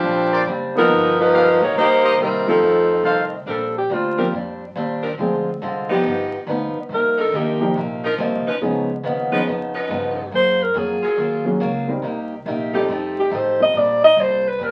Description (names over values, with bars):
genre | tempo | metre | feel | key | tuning
jazz | 140 BPM | 4/4 | swing 65% on 8ths | Bb major | A4 = 440 Hz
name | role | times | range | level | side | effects
warm saxophone section | melody | 0.0-3.3 s | F3 to Db5 | -17 LUFS | equal | none
picked acoustic archtop guitar | accompaniment | 0.0-14.7 s | F2 to Ab4 | -28 LUFS | equal | none
upright bass | bass | 0.0-14.7 s | F1 to G2 | -35 LUFS | equal | none
clear trumpet section | stabs | 0.3-3.2 s | F4 to F5 | -24 LUFS | equal | none
warm concert grand piano | accompaniment | 0.8-13.7 s | F3 to Bb4 | -25 LUFS | equal | none
mellow alto saxophone | melody | 3.5-4.3, 6.9-14.7 s | F4 to Eb5 | -19 LUFS | equal | none
clear saxophone section | sustained chords | 3.5-13.3 s | F3 to Cb5 | -26 LUFS | equal | none
room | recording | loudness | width
wet studio ambience, RT60 0.5 s | very old 78 rpm record, vinyl crackle | -19 LUFS | mono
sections
0.0-3.5 A section; 3.5-14.7 B section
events
alto saxophone solo 3.5-14.7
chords
0.0 Bb69; 0.9 G7alt; 1.8 Cm7; 2.6 F7; 3.5 Bb69; 5.2 Dm7b5; 6.0 G7b13; 6.9 Cm11; 8.6 Db9; 10.3 Gbmaj9; 12.0 Cm7; 12.9 F9; 13.7 Bb69